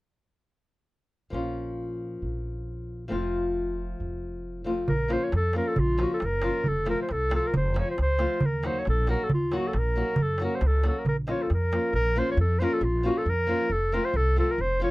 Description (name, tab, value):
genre	balkan folk, Balkan wedding band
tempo	136 BPM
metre	2/4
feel	straight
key	Bb harmonic minor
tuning	A4 = 440 Hz
part	flamenco guitar	accompaniment	1.3-14.9 s	F3 to Gb4	-30 LUFS	left 2 dB	none
part	upright bass	bass	1.3-14.8 s	F1 to Gb2	-28 LUFS	equal	none
part	warm clarinet	melody	4.9-14.9 s	F4 to Eb5	-28 LUFS	equal	none
part	darbuka	percussion	4.9-11.9 s	none	-29 LUFS	right 2 dB	none
room	light reverb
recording	dry, close 1970s-style studio recording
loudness	-24 LUFS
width	side -20 dB against mid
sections	1.3-4.9 A section; 4.9-11.9 B section; 11.9-14.9 B section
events	none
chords	1.3 Bbm; 3.1 F; 4.9 Bbm; 6.7 F; 8.4 Ebm; 10.2 Gb; 11.1 Bbm; 13.7 F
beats	| 1.33 1.77 | 2.22 2.66 | 3.11 3.55 | 4.00 4.44 | 4.88 5.33 | 5.77 6.21 | 6.65 7.10 | 7.54 7.98 | 8.42 8.86 | 9.30 9.74 | 10.19 10.63 | 11.07 11.51 | 11.95 12.39 | 12.82 13.27 | 13.70 14.14 | 14.58